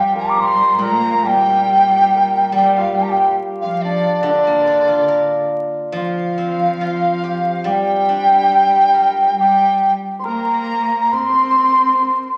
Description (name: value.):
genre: chinese traditional, Chinese chamber ensemble.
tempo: 70 BPM.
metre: 4/4.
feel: rubato.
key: G yu mode.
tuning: A4 = 440 Hz.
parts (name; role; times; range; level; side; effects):
mellow hollow large dizi; melody; 0.0-12.4 s; D5 to D6; -18 LUFS; equal; none.
hammered dulcimer; second line; 0.0-12.4 s; D4 to C5; -24 LUFS; equal; none.
mellow hollow large dizi; second line; 0.0-12.4 s; D5 to C6; -24 LUFS; equal; none.
rich cello; second line; 0.0-12.4 s; D3 to C4; -28 LUFS; equal; none.
steel-string zither; accompaniment; 0.0-10.7 s; Bb2 to Bb4; -27 LUFS; equal; none.
room: wet recital hall reverb, RT60 1.4 s.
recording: vinyl crackle.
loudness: -16 LUFS.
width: mono.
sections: 0.0-12.4 A section.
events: none.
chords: none.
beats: 0.82 1.69 | 2.54 3.40 4.25 5.10 | 5.95 6.80 7.66 8.52 | 9.38 10.25 11.13 12.02.